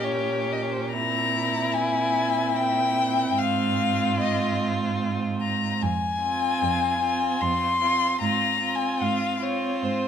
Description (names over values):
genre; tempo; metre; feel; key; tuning
classical, slow romantic movement for string quartet; 74 BPM; 3/4; rubato; F minor; A4 = 442 Hz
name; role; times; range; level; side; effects
warm violin; melody; 0.0-10.1 s; C5 to C6; -25 LUFS; left 5 dB; none
rich violin; second line; 0.0-10.1 s; E4 to G4; -30 LUFS; equal; none
warm viola; accompaniment; 0.0-10.1 s; C4 to Db4; -30 LUFS; right 5 dB; none
rich cello; bass; 0.0-10.1 s; F2 to Bb2; -30 LUFS; right 4 dB; none
room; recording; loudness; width
moderate stone room reverb, RT60 1.3 s; minimal, uncompressed stereo recording; -22 LUFS; side -8 dB against mid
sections
0.0-10.1 A section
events
none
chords
0.0 Gdim/Bb; 0.9 C7/Bb; 3.4 Fm/Ab; 5.8 Fm; 8.2 Fm/Ab